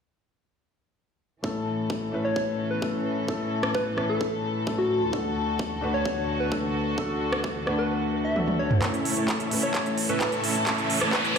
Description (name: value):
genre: EDM, festival progressive house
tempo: 130 BPM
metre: 4/4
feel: straight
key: A major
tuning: A4 = 440 Hz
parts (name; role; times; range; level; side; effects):
- dark concert grand piano; accompaniment; 1.4-11.4 s; A3 to B4; -29 LUFS; left 3 dB; vintage 12-bit sampler grit, sidechain pumping, tape echo
- warm studio string section; sustained chords; 1.4-11.4 s; D2 to A4; -31 LUFS; equal; sidechain pumping
- electronic kick drum; drums; 1.4-11.2 s; none; -33 LUFS; right 1 dB; high-pass filter on kick
- soft struck synth lead; melody; 2.2-11.3 s; F#4 to E5; -30 LUFS; equal; chorus, tape echo
- big-room dance drum kit; drums; 3.6-4.1, 7.3-11.4 s; handclaps, hi-hat, rim click, toms; -28 LUFS; right 2 dB; high-pass filter on snare, high-pass filter on toms, high-pass filter on hats
- dense compressed supersaw; riff; 8.8-11.4 s; A3 to A5; -28 LUFS; right 2 dB; sidechain pumping, low-pass filter, tape echo
- riser; sound effects; 9.5-11.4 s; none; -31 LUFS; right 2 dB; none
room: moderate lush hall reverb, RT60 1.6 s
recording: played on a big sound system in a bare room, stone room reverb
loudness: -24 LUFS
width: side -6 dB against mid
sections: 1.4-8.8 A section; 8.8-11.4 B section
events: kick drops out 7.9-8.8; drum fill 8.4-8.8, 8.8-11.4; build-up 8.8-11.4; filter sweep on supersaw synth 8.8-11.4; riser 9.5-11.4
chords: 1.4 A; 5.1 D; 8.8 A